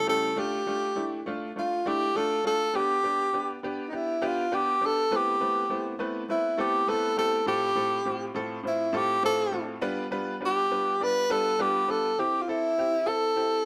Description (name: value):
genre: soul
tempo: 102 BPM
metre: 4/4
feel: straight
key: unclear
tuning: A4 = 440 Hz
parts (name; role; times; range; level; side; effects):
- warm tenor saxophone; melody; 0.0-13.7 s; Eb4 to B4; -28 LUFS; equal; none
- bright upright piano; accompaniment; 0.1-13.6 s; A2 to D5; -34 LUFS; equal; none
room: moderate echo chamber reverb, RT60 2.3 s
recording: none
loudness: -27 LUFS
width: mono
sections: 0.0-13.7 A section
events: none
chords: 0.4 Dm; 2.7 G; 5.1 Amadd9; 7.5 F/A; 9.8 G7; 12.2 C